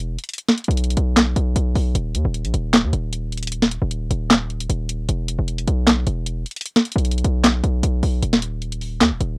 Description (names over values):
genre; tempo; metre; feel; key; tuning
hip hop, trap; 153 BPM; 4/4; half-time; unclear; A4 = 438 Hz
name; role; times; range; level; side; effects
hard-hitting 808-style bass; bass; 0.0-9.4 s; Eb1 to Eb2; -20 LUFS; equal; none
trap drum kit; drums; 0.2-9.3 s; handclaps, hi-hat, snare drum; -17 LUFS; equal; cassette tape
room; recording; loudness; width
light reverb; home recording on cassette; -18 LUFS; side -34 dB against mid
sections
0.0-8.2 A section; 8.2-9.4 B section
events
none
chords
none